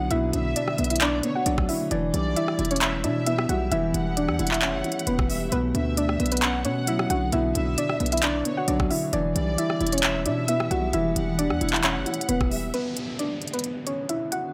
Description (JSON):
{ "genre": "hip hop, trap", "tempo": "133 BPM", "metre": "4/4", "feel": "half-time", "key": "B minor", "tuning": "A4 = 440 Hz", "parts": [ { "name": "soft round pluck", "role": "melody", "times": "0.0-14.5 s", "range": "B3 to F#5", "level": "-29 LUFS", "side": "equal", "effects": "chorus, digital delay" }, { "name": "warm studio violin section", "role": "second line", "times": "0.0-12.7 s", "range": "C#5 to F#5", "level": "-36 LUFS", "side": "equal", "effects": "digital delay" }, { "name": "dark grand piano", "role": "accompaniment", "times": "0.0-12.8 s", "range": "B2 to E5", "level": "-32 LUFS", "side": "equal", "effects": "none" }, { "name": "granular cloud pad", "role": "sustained chords", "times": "0.0-14.5 s", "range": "D3 to G4", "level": "-40 LUFS", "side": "equal", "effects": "built-in reverb" }, { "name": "hard-hitting 808-style bass", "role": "bass", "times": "0.0-12.7 s", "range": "E1 to B2", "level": "-31 LUFS", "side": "equal", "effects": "none" }, { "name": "trap drum kit", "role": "drums", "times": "0.1-14.4 s", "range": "handclaps, hi-hat, kick drum, rim click", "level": "-29 LUFS", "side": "equal", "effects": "none" }, { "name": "downlifter", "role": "sound effects", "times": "12.7-14.5 s", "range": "none", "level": "-40 LUFS", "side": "equal", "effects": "none" } ], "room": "digital ambience", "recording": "none", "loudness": "-25 LUFS", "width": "mono", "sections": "0.0-12.7 A section; 12.7-14.5 B section", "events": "none", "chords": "0.0 Bmadd9; 1.9 Em; 5.5 Bmadd9; 9.1 Em; 12.7 Bmadd9", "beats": "| 0.11 0.56 1.01 1.46 | 1.91 2.36 2.81 3.27 | 3.72 4.17 4.62 5.07 | 5.52 5.97 6.42 6.87 | 7.33 7.78 8.23 8.68 | 9.13 9.58 10.03 10.48 | 10.93 11.38 11.84 12.29 | 12.74 13.19 13.64 14.09" }